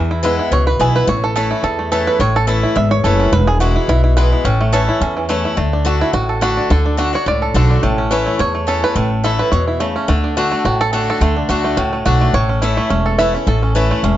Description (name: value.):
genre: bluegrass.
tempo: 213 BPM.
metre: 4/4.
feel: swing 55% on 8ths.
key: A major.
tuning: A4 = 440 Hz.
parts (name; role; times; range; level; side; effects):
bluegrass banjo; melody; 0.0-14.2 s; E3 to E5; -18 LUFS; right 3 dB; plate reverb.
picked swing-style acoustic guitar; accompaniment; 0.0-14.2 s; E2 to F#4; -19 LUFS; left 3 dB; none.
upright bass; bass; 0.0-14.2 s; E1 to E2; -17 LUFS; equal; none.
room: light reverb.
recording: nothing above 7.8 kHz.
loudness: -13 LUFS.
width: side -13 dB against mid.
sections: 0.0-5.6 A section; 5.6-14.2 A section.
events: five-string banjo solo 0.0-14.2.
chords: 0.0 E; 1.1 A; 3.3 E; 4.5 A; 5.6 D; 7.8 A; 10.1 D; 12.3 A.